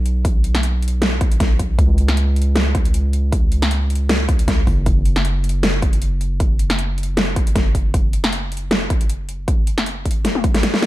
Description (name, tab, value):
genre	future bass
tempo	156 BPM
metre	4/4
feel	swing 55% on 16ths, half-time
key	unclear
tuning	A4 = 440 Hz
part	long sustained 808-style bass	bass	0.0-10.6 s	F#1 to C#2	-19 LUFS	equal	sidechain pumping
part	big-room dance drum kit	drums	0.1-10.9 s	hi-hat, snare drum, toms	-20 LUFS	equal	none
part	electronic kick drum	drums	0.2-10.5 s	none	-17 LUFS	equal	none
room	little or no reverb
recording	none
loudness	-16 LUFS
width	side -16 dB against mid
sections	0.0-10.9 A section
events	drum fill 10.2-10.9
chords	none